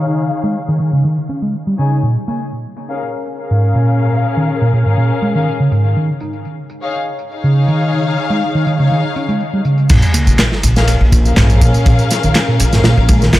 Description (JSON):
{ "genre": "breakbeat, breaks", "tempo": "122 BPM", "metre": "4/4", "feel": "straight", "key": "Bb minor", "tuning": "A4 = 440 Hz", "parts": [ { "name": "hollow-body short-scale picked electric bass", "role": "riff", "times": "0.0-13.3 s", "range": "Ab2 to Eb4", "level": "-15 LUFS", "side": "right 1 dB", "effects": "tube saturation, low-pass filter, analog delay" }, { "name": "dark symphonic string section", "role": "stabs", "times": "0.0-13.2 s", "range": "Db4 to Ab5", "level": "-20 LUFS", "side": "left 3 dB", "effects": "vintage 12-bit sampler grit, analog delay" }, { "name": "electronic tambourine and handclaps", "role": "drums", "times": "0.1-13.4 s", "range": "none", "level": "-22 LUFS", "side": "right 1 dB", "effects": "low-pass filter on perc, low-pass filter on snare, low-pass filter on room" }, { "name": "upright bass", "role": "bass", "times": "9.9-13.4 s", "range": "Bb1", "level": "-13 LUFS", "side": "equal", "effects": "tube saturation" }, { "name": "crunchy breakbeat drum kit", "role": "drums", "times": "9.9-13.4 s", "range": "crash cymbal, kick drum, ride cymbal, snare drum", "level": "-14 LUFS", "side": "equal", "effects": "analog delay" }, { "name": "sub drop", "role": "sound effects", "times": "10.0-11.9 s", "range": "none", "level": "-19 LUFS", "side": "equal", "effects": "none" } ], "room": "light reverb, small room ambience", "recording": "echo-heavy mix, low-pass filter", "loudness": "-12 LUFS", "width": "side -15 dB against mid", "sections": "0.0-9.9 A section; 9.9-13.4 B section", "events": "filter sweep 0.0-9.9; drop 9.9-13.4; impact 9.9-11.9", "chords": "0.0 Eb9sus4; 2.0 Bbm7; 6.0 Eb9sus4; 9.9 Bbm7" }